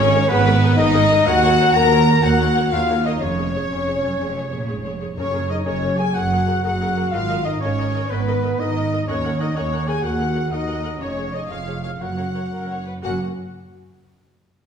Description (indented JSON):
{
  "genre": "cinematic, heroic adventure film score",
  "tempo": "123 BPM (dotted quarters)",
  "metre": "12/8",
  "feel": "straight",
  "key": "F# major",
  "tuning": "A4 = 439 Hz",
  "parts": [
    { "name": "warm symphonic violin section", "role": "melody", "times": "0.0-13.2 s", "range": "B4 to A#5", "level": "-30 LUFS", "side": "left 4 dB", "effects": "none" },
    { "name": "clear oboe", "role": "second line", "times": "0.0-13.2 s", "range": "B4 to A#5", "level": "-30 LUFS", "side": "equal", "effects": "none" },
    { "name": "mellow hollow small flute group", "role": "second line", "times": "0.0-13.2 s", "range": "B4 to A#5", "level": "-30 LUFS", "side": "equal", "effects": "none" },
    { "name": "warm clarinet", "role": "second line", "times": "0.0-13.2 s", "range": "F#4 to A#5", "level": "-29 LUFS", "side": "left 2 dB", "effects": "none" },
    { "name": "warm symphonic violin section", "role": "second line", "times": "0.0-13.2 s", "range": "B4 to A#5", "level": "-31 LUFS", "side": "left 5 dB", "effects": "none" },
    { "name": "rich symphonic viola section", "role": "accompaniment", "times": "0.0-13.2 s", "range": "A#3 to F#5", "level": "-32 LUFS", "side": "left 1 dB", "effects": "none" },
    { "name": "warm French horn section", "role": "sustained chords", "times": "0.0-13.2 s", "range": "B3 to A#4", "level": "-23 LUFS", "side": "left 2 dB", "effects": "none" },
    { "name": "warm trumpet section", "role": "stabs", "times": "0.0-13.2 s", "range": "C#4 to A#5", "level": "-28 LUFS", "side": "equal", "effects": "none" },
    { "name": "rich symphonic cello section", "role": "bass", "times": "0.0-13.2 s", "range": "D#2 to A#2", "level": "-25 LUFS", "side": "right 2 dB", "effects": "none" },
    { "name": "warm symphonic double bass section", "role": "bass", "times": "0.0-13.2 s", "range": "E#1 to D#2", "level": "-24 LUFS", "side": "right 3 dB", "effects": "none" },
    { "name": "timpani", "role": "percussion", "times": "5.2-5.6, 13.0-13.2 s", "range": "F#2", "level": "-35 LUFS", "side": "left 1 dB", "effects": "none" }
  ],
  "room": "wet recital hall reverb, RT60 1.5 s",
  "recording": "recorded in a church or concert hall",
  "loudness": "-17 LUFS",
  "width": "side -7 dB against mid",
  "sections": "0.0-13.0 A section; 13.0-14.7 B section",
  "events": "slowing down 9.7-13.0",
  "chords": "0.0 G#madd9; 1.3 D#m7; 3.2 C#/E#; 5.2 F#add9; 7.1 G#madd9; 9.1 D#m7; 11.0 C#/E#; 12.0 F#; 13.0 N.C."
}